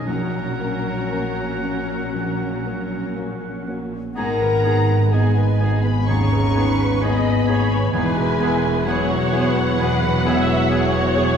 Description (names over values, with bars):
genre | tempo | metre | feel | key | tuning
cinematic, emotional film score for orchestra | 57-66 BPM | 4/4 | rubato | unclear | A4 = 441 Hz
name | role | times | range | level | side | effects
muted symphonic violin section | melody | 0.0-11.4 s | F#5 to C#6 | -29 LUFS | left 2 dB | none
clear clarinet | second line | 0.0-11.3 s | B3 to C#4 | -31 LUFS | right 1 dB | none
clear oboe | second line | 0.0-11.3 s | F#5 to G#5 | -33 LUFS | right 2 dB | none
muted studio violin section | second line | 0.0-11.4 s | B3 to B4 | -32 LUFS | equal | none
felt-muted upright piano | accompaniment | 0.0-11.4 s | A#1 to G#4 | -26 LUFS | left 1 dB | none
muted symphonic viola section | accompaniment | 0.0-11.4 s | F#3 to E5 | -27 LUFS | right 1 dB | none
mellow French horn section | sustained chords | 0.0-11.4 s | F#3 to A#4 | -25 LUFS | left 2 dB | none
concert harp | arpeggios | 0.0-11.4 s | E2 to E5 | -29 LUFS | left 2 dB | none
muted symphonic cello section | bass | 0.0-11.4 s | E2 to A#2 | -27 LUFS | right 2 dB | none
muted symphonic double bass section | bass | 0.0-11.4 s | E1 to A#1 | -24 LUFS | right 2 dB | none
mellow hollow silver concert flute | second line | 4.1-11.4 s | B4 to A#5 | -30 LUFS | left 2 dB | none
room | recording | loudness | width
wet scoring stage reverb, RT60 1.6 s | heard from further back in the room | -17 LUFS | side -7 dB against mid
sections
0.0-4.2 A section; 4.2-11.4 B section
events
none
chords
0.1 F#/A#; 4.2 G#m; 7.9 Eadd9